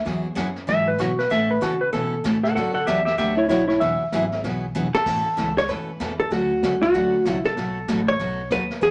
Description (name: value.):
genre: country, western swing.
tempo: 192 BPM.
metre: 4/4.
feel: swing 62% on 8ths.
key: A major.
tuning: A4 = 440 Hz.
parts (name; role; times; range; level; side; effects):
clean lap steel guitar; second line; 0.0-4.4 s; E4 to F#5; -23 LUFS; equal; none.
upright bass; bass; 0.0-8.9 s; E1 to C#3; -30 LUFS; equal; none.
picked steel-string acoustic guitar; accompaniment; 0.1-8.9 s; B2 to A4; -30 LUFS; equal; none.
vintage brush drum kit; drums; 0.1-8.9 s; brushed snare drum, crash cymbal, hi-hat, kick drum, snare drum; -36 LUFS; equal; none.
vintage hollow-body jazz guitar; melody; 4.9-8.9 s; F#4 to C#5; -24 LUFS; equal; none.
room: wet club reverb, RT60 0.5 s.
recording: none.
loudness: -22 LUFS.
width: mono.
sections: 0.0-5.1 A section; 5.1-8.9 B section.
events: electric slide guitar solo 0.0-5.1; drum fill 4.8-5.1.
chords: 0.1 Eadd9; 1.3 Aadd9; 2.6 Bm; 3.8 Eadd9; 5.1 Aadd9; 6.3 Dmaj7; 7.6 B7.